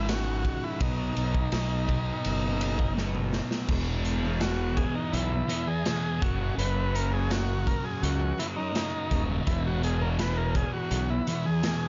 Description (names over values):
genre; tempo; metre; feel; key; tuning
psychedelic rock; 83 BPM; 4/4; straight; unclear; A4 = 441 Hz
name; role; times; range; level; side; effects
overdriven combo organ; melody; 0.0-11.9 s; D#4 to B4; -36 LUFS; equal; analog delay
thick fuzz guitar; riff; 0.0-11.9 s; C#2 to B3; -34 LUFS; equal; distortion, phaser
fuzz fingered electric bass; bass; 0.0-11.2 s; D#1 to C#2; -32 LUFS; equal; overdrive
raw garage drum kit; drums; 0.1-11.8 s; crash cymbal, hi-hat, kick drum, ride cymbal, snare drum, toms; -34 LUFS; equal; none
room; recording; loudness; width
light reverb, small room ambience; echo-heavy mix, nothing above 7.4 kHz; -28 LUFS; mono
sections
0.0-3.7 A section; 3.7-11.9 B section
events
drum fill 3.0-3.7; transistor combo organ solo 3.7-11.9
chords
0.0 C#5; 0.8 B; 3.7 E5; 6.2 F#5; 9.5 E5